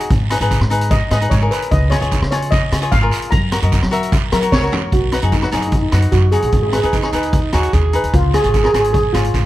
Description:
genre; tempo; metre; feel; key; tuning
calypso; 150 BPM; 4/4; straight; B major; A4 = 442 Hz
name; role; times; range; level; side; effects
cavaquinho; accompaniment; 0.0-9.4 s; D#4 to E5; -22 LUFS; left 2 dB; none
street-band drum kit; drums; 0.0-9.4 s; hi-hat, kick drum, rim click, snare drum, toms; -18 LUFS; equal; none
upright bass; bass; 0.1-9.5 s; G#1 to F#3; -17 LUFS; equal; none
guiro; percussion; 0.1-9.4 s; none; -28 LUFS; right 8 dB; none
steel pan; melody; 0.9-9.5 s; D#4 to A#5; -20 LUFS; right 1 dB; none
warm alto saxophone; second line; 6.9-8.0 s; D#4 to G#4; -23 LUFS; right 4 dB; none
room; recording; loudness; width
little or no reverb; close, detailed microphones; -13 LUFS; side -15 dB against mid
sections
0.0-4.9 A section; 4.9-9.5 B section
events
steel pan solo 0.0-4.9; drum fill 4.5-4.9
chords
0.1 G#m; 1.7 C#; 3.3 F#; 4.9 B; 6.5 G#m; 8.1 C#

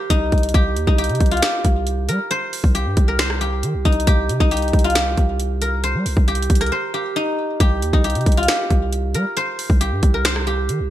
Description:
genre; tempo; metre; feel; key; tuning
hip hop, trap; 136 BPM; 4/4; half-time; C minor; A4 = 440 Hz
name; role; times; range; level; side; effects
guzheng; melody; 0.0-10.9 s; Eb4 to C5; -21 LUFS; equal; none
long sustained 808-style bass; bass; 0.1-10.9 s; C2 to G3; -21 LUFS; equal; none
trap drum kit; drums; 0.1-10.8 s; finger snaps, hi-hat, kick drum, rim click, snare drum; -18 LUFS; equal; gated reverb
room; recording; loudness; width
little or no reverb; bright 1980s-style digital production; -16 LUFS; side -12 dB against mid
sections
0.0-7.6 A section; 7.6-10.9 A section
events
break 6.7-7.6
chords
0.0 Cm

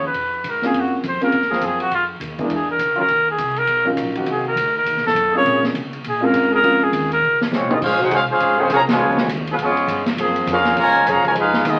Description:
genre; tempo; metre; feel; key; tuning
jazz, big band swing; 203 BPM; 4/4; swing 61% on 8ths; Bb minor; A4 = 442 Hz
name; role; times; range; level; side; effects
breathy trumpet; melody; 0.0-7.4 s; F4 to Db5; -20 LUFS; equal; none
warm trombone section; sustained chords; 0.0-10.6 s; Db3 to Ab4; -26 LUFS; equal; none
upright bass; bass; 0.0-11.8 s; Ab1 to Db3; -33 LUFS; equal; none
swinging big-band drum kit; drums; 0.1-11.7 s; crash cymbal, hi-hat, kick drum, ride cymbal, snare drum, toms; -29 LUFS; equal; none
warm upright piano; accompaniment; 0.6-7.1 s; Gb3 to Bb4; -23 LUFS; equal; none
clear trumpet section; melody; 7.5-11.8 s; Ab3 to Bb5; -19 LUFS; equal; none
mellow trombone section; second line; 7.5-11.8 s; Cb3 to Gb4; -27 LUFS; equal; none
room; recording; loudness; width
wet studio ambience, RT60 0.5 s; very old 78 rpm record, vinyl crackle; -18 LUFS; mono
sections
0.0-7.8 A section; 7.8-11.8 B section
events
trumpet solo 0.0-7.8; drum fill 7.2-7.8; band accent 8.9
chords
0.0 Db7; 0.7 Gbmaj9#11; 1.9 Fm7b5; 2.5 E7#11; 3.1 Ebm9; 4.3 Cm7b5; 4.9 B7#11; 5.5 Bbm9; 9.0 Db7; 10.2 Gbmaj9#11

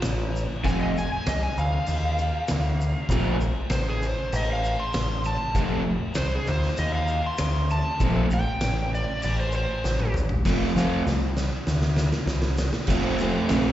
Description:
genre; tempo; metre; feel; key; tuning
garage rock duo or trio; 98 BPM; 4/4; straight; F mixolydian; A4 = 443 Hz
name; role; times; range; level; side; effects
overdriven slide guitar; melody; 0.0-10.1 s; F4 to C6; -29 LUFS; equal; plate reverb, slapback echo, analog delay
growling picked electric bass; bass; 0.0-13.7 s; F1 to Eb2; -25 LUFS; equal; overdrive
oversized low-tuned drum kit; drums; 0.0-13.6 s; crash cymbal, kick drum, snare drum, toms; -29 LUFS; equal; none
tube shaker; percussion; 0.0-13.6 s; none; -44 LUFS; left 2 dB; none
crunchy overdriven guitar; riff; 0.6-13.7 s; F2 to F4; -24 LUFS; right 1 dB; slapback echo
room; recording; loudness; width
light reverb; live gig heard through the venue's PA, recital hall reverb, nothing above 7.8 kHz; -22 LUFS; side -13 dB against mid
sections
0.0-10.5 A section; 10.5-12.9 B section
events
electric slide guitar solo 0.0-10.5; drum fill 9.8-10.5, 10.5-12.9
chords
0.0 F

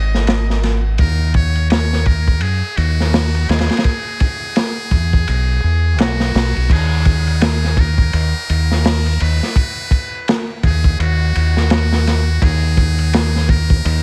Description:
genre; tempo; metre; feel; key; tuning
trip hop; 84 BPM; 4/4; swing 59% on 16ths; Eb phrygian; A4 = 443 Hz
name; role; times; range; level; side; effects
trumpet with metal mute; melody; 0.0-14.0 s; Gb4 to Eb5; -26 LUFS; equal; tape echo
deep dub fingered electric bass; bass; 0.0-14.0 s; Ab1 to Gb2; -18 LUFS; equal; none
crunchy breakbeat drum kit; drums; 0.1-14.0 s; crash cymbal, hi-hat, kick drum, ride cymbal, snare drum; -20 LUFS; equal; vintage 12-bit sampler grit
room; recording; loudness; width
studio reverb; vinyl crackle; -16 LUFS; mono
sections
0.0-6.7 A section; 6.7-14.0 B section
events
none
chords
0.0 Ab5; 1.0 Ebm; 3.8 E; 6.7 Eb5

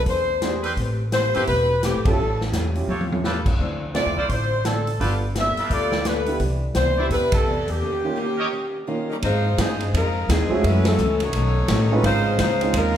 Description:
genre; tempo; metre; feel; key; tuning
jazz, big band swing; 170 BPM; 4/4; swing 62% on 8ths; Ab major from 9.2 s; A4 = 439 Hz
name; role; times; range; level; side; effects
upright bass; bass; 0.0-13.0 s; E1 to Ab2; -24 LUFS; equal; none
bright saxophone section; melody; 0.1-13.0 s; F3 to E5; -23 LUFS; left 1 dB; none
picked acoustic archtop guitar; accompaniment; 0.1-13.0 s; Gb2 to B4; -30 LUFS; left 4 dB; none
swinging big-band drum kit; drums; 0.1-12.8 s; crash cymbal, hi-hat, kick drum, ride cymbal, snare drum, toms; -26 LUFS; equal; none
warm concert grand piano; accompaniment; 0.4-13.0 s; Eb3 to Bb4; -27 LUFS; right 4 dB; none
brilliant trumpet section; stabs; 0.6-8.5 s; E4 to Eb5; -30 LUFS; right 1 dB; none
room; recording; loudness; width
wet recital hall reverb, RT60 1.4 s; heard from further back in the room; -19 LUFS; side -10 dB against mid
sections
0.0-9.2 A section; 9.2-13.0 B section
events
band accent 2.0, 7.3, 10.8; drum fill 2.9-3.2; break 7.8-9.2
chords
0.1 E7alt; 0.8 Am9; 2.2 A7b13; 3.6 Dm9; 5.0 G9; 6.4 Cmaj9; 7.8 Eb7; 9.2 Ab6; 10.6 Gbm7; 11.3 B9; 12.0 Dbmaj9

